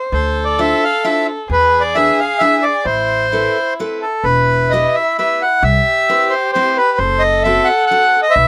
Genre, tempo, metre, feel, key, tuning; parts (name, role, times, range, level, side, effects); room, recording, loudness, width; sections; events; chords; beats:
musette waltz; 132 BPM; 3/4; straight; A harmonic minor, E harmonic minor from 4.2 s; A4 = 440 Hz
dark violin; second line; 0.0-8.5 s; E4 to C5; -24 LUFS; equal
accordion; melody; 0.1-8.5 s; A4 to F#5; -15 LUFS; equal
upright bass; bass; 0.1-8.5 s; E1 to E2; -22 LUFS; equal
picked steel-string acoustic guitar; accompaniment; 0.6-8.1 s; B3 to C5; -24 LUFS; equal
little or no reverb; rough home demo mix; -15 LUFS; mono
0.0-4.2 A section; 4.2-8.5 B section
0.1 Dm9; 1.5 E7; 2.9 Amadd9; 4.2 Em; 5.6 Cmaj7; 7.0 F#dim
| 0.13 0.59 1.04 | 1.50 1.96 2.41 | 2.87 3.32 3.79 | 4.25 4.71 5.17 | 5.62 6.08 6.53 | 6.99 7.44 7.90 | 8.36